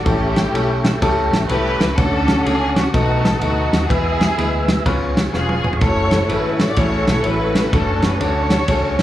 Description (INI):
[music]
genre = uptempo gospel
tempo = 125 BPM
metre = 4/4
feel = swing 64% on 8ths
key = A major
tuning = A4 = 440 Hz
[part]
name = warm studio string section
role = melody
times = 0.0-9.0 s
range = A3 to D5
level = -21 LUFS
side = equal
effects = slapback echo
[part]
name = mellow tonewheel organ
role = sustained chords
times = 0.0-9.0 s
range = A3 to E6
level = -26 LUFS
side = right 1 dB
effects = slow rotary speaker, chorus vibrato
[part]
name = vintage muted fingered electric bass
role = bass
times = 0.0-9.0 s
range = E1 to E2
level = -22 LUFS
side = equal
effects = none
[part]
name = warm grand piano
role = accompaniment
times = 0.1-9.0 s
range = A2 to B4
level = -22 LUFS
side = left 3 dB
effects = slapback echo
[part]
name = warm soul drum kit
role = drums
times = 0.1-9.0 s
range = kick drum, ride cymbal, snare drum, toms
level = -20 LUFS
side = equal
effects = none
[sound]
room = small room ambience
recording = live gig heard through the venue's PA, club reverb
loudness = -15 LUFS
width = side -13 dB against mid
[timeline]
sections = 0.0-9.0 A section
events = drum fill 5.3-5.8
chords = 0.1 A7; 2.0 Dmaj7; 2.9 B7; 3.9 E; 4.9 C#7; 5.8 F#m7; 7.7 Dmaj7/F#